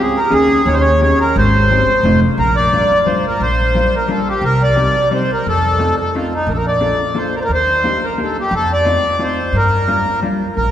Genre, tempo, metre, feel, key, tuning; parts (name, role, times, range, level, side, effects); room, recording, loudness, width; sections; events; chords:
musette waltz; 176 BPM; 3/4; swing 54% on 8ths; Bb major; A4 = 435 Hz
accordion; melody; 0.0-10.7 s; Eb4 to D5; -15 LUFS; equal
vintage hollow-body jazz guitar; accompaniment; 0.0-10.4 s; G3 to A4; -21 LUFS; left 1 dB
upright bass; bass; 0.3-10.7 s; F1 to G2; -18 LUFS; equal
wet cathedral reverb, RT60 4.6 s; recorded in a church or concert hall; -12 LUFS; side -10 dB against mid
0.0-2.4 A section; 2.4-10.7 B section
0.3 Eb7sus4; 0.7 Eb7; 1.4 Abmaj7; 2.0 F7; 2.4 Bb6; 4.4 Cm; 5.4 F7; 6.5 Bbmaj7; 7.5 Ebmaj7; 8.5 F7; 9.5 Gm7